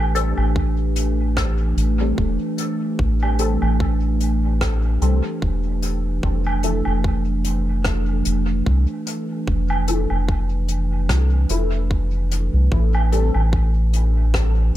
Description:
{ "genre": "ambient dub", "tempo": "74 BPM", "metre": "4/4", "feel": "swing 56% on 16ths", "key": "A minor", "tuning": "A4 = 442 Hz", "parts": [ { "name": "warbly tape-like pad", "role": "sustained chords", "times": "0.0-14.8 s", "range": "E3 to B4", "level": "-26 LUFS", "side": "right 1 dB", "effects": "chorus, built-in reverb" }, { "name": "round analog bass", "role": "bass", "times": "0.0-14.8 s", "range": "E1 to C2", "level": "-19 LUFS", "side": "equal", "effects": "none" }, { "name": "filtered dub chord stab", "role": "stabs", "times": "0.1-13.4 s", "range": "F3 to A4", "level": "-29 LUFS", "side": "left 3 dB", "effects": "phaser, ensemble chorus, dub echo" }, { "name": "jazz brush drum kit", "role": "drums", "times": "0.2-14.5 s", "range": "hi-hat, rim click, woodblock", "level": "-29 LUFS", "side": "right 1 dB", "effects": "dub echo" }, { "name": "electronic kick drum", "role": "drums", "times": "0.6-14.5 s", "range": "none", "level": "-23 LUFS", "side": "equal", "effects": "none" } ], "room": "small room ambience", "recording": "none", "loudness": "-18 LUFS", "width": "side -14 dB against mid", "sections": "0.0-14.8 A section", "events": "none", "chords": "0.0 Am7; 6.2 Fmaj7; 12.7 Am7" }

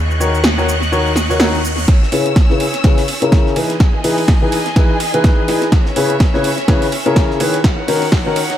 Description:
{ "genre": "piano house", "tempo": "125 BPM", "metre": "4/4", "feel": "swing 57% on 16ths", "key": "C# dorian", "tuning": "A4 = 440 Hz", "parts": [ { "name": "bright studio violin section", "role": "sustained chords", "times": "0.0-8.6 s", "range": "C#4 to F#6", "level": "-23 LUFS", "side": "left 1 dB", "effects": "sidechain pumping" }, { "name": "organ-like FM bass", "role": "bass", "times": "0.0-1.9 s", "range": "D#2", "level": "-18 LUFS", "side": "equal", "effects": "sidechain pumping" }, { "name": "riser", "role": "sound effects", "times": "0.0-1.9 s", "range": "none", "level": "-26 LUFS", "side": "equal", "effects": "none" }, { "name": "punchy analog drum machine", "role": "drums", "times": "0.1-8.6 s", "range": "hi-hat, shaker, snare drum", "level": "-21 LUFS", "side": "right 1 dB", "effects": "overdrive, high-pass filter on perc, high-pass filter on snare, high-pass filter on hats, high-pass filter on room, analog delay" }, { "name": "clear upright piano", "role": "riff", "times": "0.2-8.4 s", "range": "C#3 to C#5", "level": "-17 LUFS", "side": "left 2 dB", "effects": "sidechain pumping, low-pass filter, analog delay" }, { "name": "cloth-damped thuddy drum kit", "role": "drums", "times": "1.9-8.6 s", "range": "hi-hat, ride cymbal, snare drum", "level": "-29 LUFS", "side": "right 1 dB", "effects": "high-pass filter on cymbals, high-pass filter on hats, high-pass filter on snare, high-pass filter on room, analog delay" }, { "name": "electronic kick drum", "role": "drums", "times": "1.9-8.2 s", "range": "none", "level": "-12 LUFS", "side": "equal", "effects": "overdrive" } ], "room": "light reverb, small room ambience", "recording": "echo-heavy mix, high-pass filter", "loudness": "-12 LUFS", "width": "side -11 dB against mid", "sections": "0.0-1.9 A section; 1.9-8.6 B section", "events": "riser 0.0-1.9; filter sweep on drum 0.0-1.9; build-up 1.9-8.6; drum fill 1.9-8.6; filter sweep on upright piano 1.9-8.6", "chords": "0.0 D#m7; 1.9 C#m7; 3.6 Emaj7; 5.7 C#m7; 7.6 D#m7" }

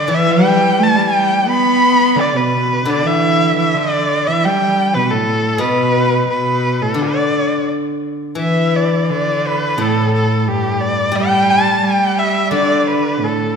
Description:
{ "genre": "chinese traditional, Chinese chamber ensemble", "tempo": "87 BPM", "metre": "2/4", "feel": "rubato", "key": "D zhi mode", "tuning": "A4 = 440 Hz", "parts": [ { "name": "rich erhu", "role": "melody", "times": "0.0-13.6 s", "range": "G4 to B5", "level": "-16 LUFS", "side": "left 1 dB", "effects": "none" }, { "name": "rich cello", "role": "second line", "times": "0.0-13.6 s", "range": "G2 to B3", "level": "-17 LUFS", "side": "right 2 dB", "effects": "none" }, { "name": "steel-string zither", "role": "accompaniment", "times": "0.1-13.6 s", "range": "A2 to G3", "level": "-20 LUFS", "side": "left 4 dB", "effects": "none" } ], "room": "wet scoring stage reverb, RT60 1.7 s", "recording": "minimal, uncompressed stereo recording", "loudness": "-13 LUFS", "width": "side -6 dB against mid", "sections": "0.0-8.4 A section; 8.4-13.6 B section", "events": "none", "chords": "none" }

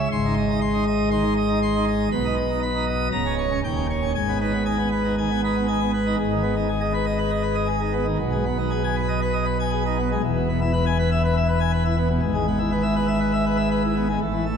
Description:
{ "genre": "classical, organ toccata", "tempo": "119 BPM", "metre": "4/4", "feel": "straight", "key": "G# minor", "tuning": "A4 = 440 Hz", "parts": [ { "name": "pipe organ, plenum", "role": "solo", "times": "0.0-14.6 s", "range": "C#1 to B#5", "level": "-20 LUFS", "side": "equal", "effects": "none" } ], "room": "wet church reverb, RT60 2.8 s", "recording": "none", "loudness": "-20 LUFS", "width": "side -7 dB against mid", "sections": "0.0-6.2 A section; 6.2-14.6 B section", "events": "none", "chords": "0.1 G#; 2.1 B; 3.1 A#m/C#; 3.6 D#7; 4.1 G#m; 8.2 G#m/B; 10.2 E; 12.2 E/G#" }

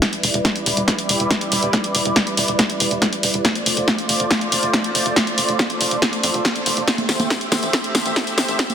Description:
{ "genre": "uplifting trance", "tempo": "140 BPM", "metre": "4/4", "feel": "straight", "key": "unclear", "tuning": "A4 = 441 Hz", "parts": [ { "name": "filtered supersaw swell", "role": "sustained chords", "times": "0.0-8.7 s", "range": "G3 to D5", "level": "-22 LUFS", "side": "right 1 dB", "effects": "sidechain pumping" }, { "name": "electronic kick drum", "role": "drums", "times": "0.0-8.7 s", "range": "none", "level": "-26 LUFS", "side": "equal", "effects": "high-pass filter on kick, high-pass filter on room" }, { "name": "punchy analog drum machine", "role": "drums", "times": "0.0-8.7 s", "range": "congas, hi-hat, snare drum, tambourine", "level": "-18 LUFS", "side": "equal", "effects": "none" }, { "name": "tight sequencer bass", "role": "bass", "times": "0.2-8.5 s", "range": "E1 to F2", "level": "-28 LUFS", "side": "equal", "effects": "sidechain pumping, high-pass filter" } ], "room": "moderate lush hall reverb, RT60 2.0 s", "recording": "dense, heavily limited modern master, high-pass filter", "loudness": "-16 LUFS", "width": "side -8 dB against mid", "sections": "0.0-8.7 A section", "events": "build-up 0.0-8.7; drum fill 0.0-8.7", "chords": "0.0 Em7; 3.4 F6; 6.9 Am7" }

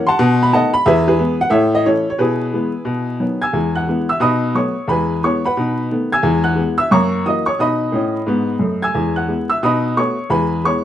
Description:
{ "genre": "jazz, stride piano", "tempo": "178 BPM", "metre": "4/4", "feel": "swing 62% on 8ths", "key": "E major", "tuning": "A4 = 440 Hz", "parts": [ { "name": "clear upright piano", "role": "solo", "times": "0.0-10.8 s", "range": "E2 to G#6", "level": "-14 LUFS", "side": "equal", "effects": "none" } ], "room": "moderate club reverb, RT60 0.6 s", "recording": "dark, warm production, vinyl crackle", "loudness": "-14 LUFS", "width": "side -11 dB against mid", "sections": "0.0-3.5 A section; 3.5-10.8 B section", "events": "none", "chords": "0.2 B7; 0.8 E; 1.5 A; 2.2 E/B; 2.9 B; 3.5 E; 4.2 B7; 4.9 E; 5.6 B7; 6.2 E; 6.9 F#7; 7.6 B; 8.9 E; 9.6 B7; 10.3 E" }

